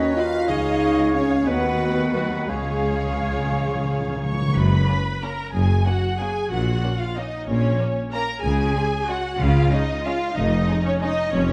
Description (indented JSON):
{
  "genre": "classical, orchestral ballroom waltz",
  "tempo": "164-201 BPM",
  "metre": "3/4",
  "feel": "rubato",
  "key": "F# major",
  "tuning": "A4 = 442 Hz",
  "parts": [
    { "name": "bright concert flute", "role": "second line", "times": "0.0-4.4 s", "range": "D#5 to F#5", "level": "-34 LUFS", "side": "equal", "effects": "none" },
    { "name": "mellow clarinet", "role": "second line", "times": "0.0-4.4 s", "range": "F#4 to G#4", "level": "-36 LUFS", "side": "equal", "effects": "none" },
    { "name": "rich studio violin section", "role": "second line", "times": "0.0-11.1 s", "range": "G#3 to E#5", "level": "-36 LUFS", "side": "equal", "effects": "none" },
    { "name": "warm oboe", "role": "second line", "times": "0.0-4.4 s", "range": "B4 to C#5", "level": "-35 LUFS", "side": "equal", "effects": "none" },
    { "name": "warm bassoon", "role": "accompaniment", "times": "0.0-4.4 s", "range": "C#3 to D#3", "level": "-33 LUFS", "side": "equal", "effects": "none" },
    { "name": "dark French horn section", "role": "sustained chords", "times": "0.0-4.4 s", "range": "F#3 to E#4", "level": "-26 LUFS", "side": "equal", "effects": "none" },
    { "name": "warm studio violin section", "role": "melody", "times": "0.2-11.5 s", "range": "C#5 to C#6", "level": "-31 LUFS", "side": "equal", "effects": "none" },
    { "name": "clear studio viola section", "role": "accompaniment", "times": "0.2-11.5 s", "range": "C#4 to C#5", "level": "-32 LUFS", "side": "equal", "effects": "none" },
    { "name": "rich studio cello section", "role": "bass", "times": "0.5-11.5 s", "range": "C#2 to C#3", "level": "-29 LUFS", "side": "equal", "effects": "none" },
    { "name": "rich studio double bass section", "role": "bass", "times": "0.5-11.5 s", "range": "E#1 to D#2", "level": "-28 LUFS", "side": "equal", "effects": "none" },
    { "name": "timpani", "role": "percussion", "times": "0.5-5.0 s", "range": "F#2 to C#3", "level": "-29 LUFS", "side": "equal", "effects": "none" },
    { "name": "mellow tuba", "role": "bass", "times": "4.6-11.5 s", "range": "E#1 to C#2", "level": "-32 LUFS", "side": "equal", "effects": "none" }
  ],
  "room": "wet scoring stage reverb, RT60 1.5 s",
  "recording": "dark, warm production",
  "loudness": "-22 LUFS",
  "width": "mono",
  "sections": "0.0-4.6 A section; 4.6-11.5 B section",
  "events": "timpani fill 2.5-4.6",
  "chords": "0.5 C#; 1.5 B/D#; 2.5 C#; 4.6 F#; 6.5 F#/A#; 8.4 C#; 10.4 C#/E#"
}